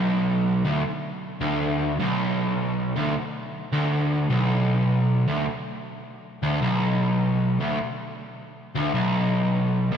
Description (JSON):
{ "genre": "rock", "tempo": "103 BPM", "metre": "4/4", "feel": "swing 67% on 8ths", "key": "unclear", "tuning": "A4 = 440 Hz", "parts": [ { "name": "overdriven electric guitar", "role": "solo", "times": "0.0-10.0 s", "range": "B1 to D2", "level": "-22 LUFS", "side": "equal", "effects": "slapback echo" } ], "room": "wet lush hall reverb, RT60 3.1 s", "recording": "big arena sound", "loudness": "-22 LUFS", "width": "side -8 dB against mid", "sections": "0.0-10.0 A section", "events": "none", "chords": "none" }